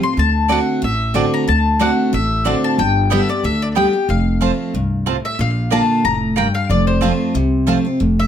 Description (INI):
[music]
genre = bluegrass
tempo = 184 BPM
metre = 4/4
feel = straight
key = F major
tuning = A4 = 441 Hz
[part]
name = mandolin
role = melody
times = 0.0-8.3 s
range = C5 to C6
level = -20 LUFS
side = left 4 dB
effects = slapback echo
[part]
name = picked steel-string acoustic guitar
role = accompaniment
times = 0.0-8.3 s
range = F2 to G4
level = -19 LUFS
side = equal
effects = none
[part]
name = upright bass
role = bass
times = 0.2-8.3 s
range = F1 to D2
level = -18 LUFS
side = equal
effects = none
[part]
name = mandolin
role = stabs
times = 0.5-7.8 s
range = Bb3 to Bb5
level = -20 LUFS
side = right 9 dB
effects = none
[part]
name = lap resonator guitar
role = second line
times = 5.3-8.3 s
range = C5 to Bb5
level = -27 LUFS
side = left 6 dB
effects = none
[sound]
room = light reverb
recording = close, detailed microphones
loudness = -14 LUFS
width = side -9 dB against mid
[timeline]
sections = 0.0-5.4 A section; 5.4-8.3 B section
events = none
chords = 0.2 D7; 2.8 G; 4.1 F; 5.4 Bb; 6.7 F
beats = | 0.17 0.50 0.82 1.15 | 1.48 1.80 2.13 2.46 | 2.78 3.11 3.43 3.76 | 4.08 4.41 4.74 5.06 | 5.39 5.72 6.04 6.37 | 6.70 7.02 7.35 7.67 | 8.00